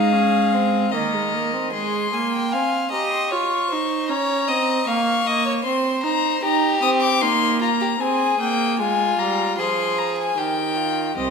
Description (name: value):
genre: classical, baroque-style fugue for string quartet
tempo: 76 BPM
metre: 3/4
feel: straight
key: Ab major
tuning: A4 = 440 Hz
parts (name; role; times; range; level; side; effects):
- warm violin; melody; 0.0-11.3 s; Eb5 to Eb6; -22 LUFS; left 8 dB; none
- rich violin; second line; 0.0-11.3 s; Eb4 to Ab5; -24 LUFS; left 1 dB; none
- rich viola; accompaniment; 0.0-11.3 s; Eb3 to G4; -23 LUFS; right 5 dB; none
- rich cello; bass; 0.0-1.7, 11.2-11.3 s; C2 to Ab3; -23 LUFS; right 4 dB; none
room: wet recital hall reverb, RT60 1.6 s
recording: minimal, uncompressed stereo recording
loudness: -18 LUFS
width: side -5 dB against mid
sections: 0.0-1.7 A section; 1.7-11.2 B section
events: none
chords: 0.0 Ebsus4/Ab; 0.9 Eb5; 1.7 Ab; 3.3 Db/F; 4.1 Eb5; 5.6 Cm7; 6.4 Eb; 8.0 Ab/C; 8.8 Bb5; 10.4 Eb